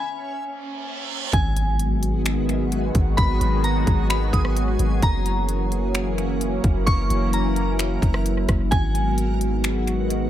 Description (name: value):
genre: hip hop, atmospheric cloud-rap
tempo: 130 BPM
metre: 4/4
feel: half-time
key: G# minor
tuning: A4 = 440 Hz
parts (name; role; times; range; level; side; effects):
- glassy synth bell; melody; 0.0-9.1 s; G#5 to D#6; -28 LUFS; equal; chorus, analog delay
- backwards swelling texture; texture; 0.0-10.3 s; A#3 to G#5; -36 LUFS; right 1 dB; built-in reverb
- reverse cymbal and impact; sound effects; 0.6-3.2 s; none; -33 LUFS; right 3 dB; none
- sweeping resonant pad; sustained chords; 1.3-10.3 s; D#3 to F#4; -25 LUFS; equal; chorus, sidechain pumping
- warm 808-style bass; bass; 1.3-10.3 s; F#1 to G#1; -23 LUFS; equal; none
- trap drum kit; drums; 1.3-10.2 s; finger snaps, hi-hat, kick drum, rim click; -23 LUFS; equal; none
room: digital ambience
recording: echo-heavy mix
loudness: -19 LUFS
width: side -12 dB against mid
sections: 0.0-1.3 A section; 1.3-10.3 B section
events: stop 0.0-1.3; reverse cymbal 0.6-1.3; impact 1.3-3.2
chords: 0.0 C#m; 1.3 G#m7; 5.0 F#7; 8.7 G#m7